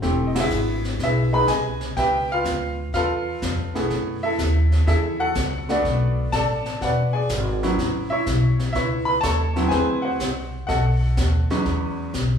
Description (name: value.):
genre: jazz piano trio.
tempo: 124 BPM.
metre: 4/4.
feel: swing 68% on 8ths.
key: unclear.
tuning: A4 = 441 Hz.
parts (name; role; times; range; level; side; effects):
clear baby grand piano; melody; 0.0-12.1 s; E2 to B5; -23 LUFS; equal; none.
upright bass; bass; 0.0-12.4 s; E1 to F#2; -23 LUFS; equal; none.
jazz brush drum kit; drums; 0.0-12.4 s; brushed snare drum, hi-hat, kick drum, ride cymbal, snare drum; -31 LUFS; equal; none.
room: wet large studio reverb, RT60 1.2 s.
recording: band playing live in one room, studio ambience.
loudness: -20 LUFS.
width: side -7 dB against mid.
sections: 0.0-11.7 A section.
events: band accent 0.3.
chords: 0.0 Emaj9; 2.0 C#7alt; 3.9 F#m11; 5.8 Bm7; 6.8 E9; 7.8 A69; 9.7 D13; 10.7 B7; 11.7 E69.